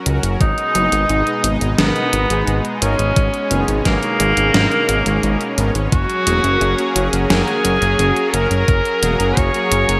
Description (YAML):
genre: synthwave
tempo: 87 BPM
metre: 4/4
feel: straight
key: G# minor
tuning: A4 = 440 Hz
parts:
  - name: lush unison pad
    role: sustained chords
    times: 0.0-10.0 s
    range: B2 to A#4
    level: -25 LUFS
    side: equal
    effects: chorus, sidechain pumping
  - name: fat analog bass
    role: bass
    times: 0.1-10.0 s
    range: E1 to C#2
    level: -21 LUFS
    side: equal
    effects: tube saturation, sidechain pumping
  - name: gated 80s digital drum machine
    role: drums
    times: 0.1-10.0 s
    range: hi-hat, snare drum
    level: -23 LUFS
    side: equal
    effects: gated reverb, gated reverb snare, overdrive
  - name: clear tenor saxophone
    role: melody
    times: 0.4-10.0 s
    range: A#3 to C#5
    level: -21 LUFS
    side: equal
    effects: delay
  - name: electronic kick drum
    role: drums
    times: 0.4-9.5 s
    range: none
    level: -20 LUFS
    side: equal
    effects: overdrive
  - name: analog synth brass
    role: stabs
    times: 0.8-10.0 s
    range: G#3 to A#4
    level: -26 LUFS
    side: equal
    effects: chorus
room: moderate lush hall reverb, RT60 2.2 s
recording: bright 1980s-style digital production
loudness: -17 LUFS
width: mono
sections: 0.0-10.0 A section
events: none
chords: 0.4 G#m; 5.9 F#add9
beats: | 0.41 1.10 1.79 2.48 | 3.17 3.85 4.54 5.24 | 5.92 6.61 7.30 7.99 | 8.68 9.37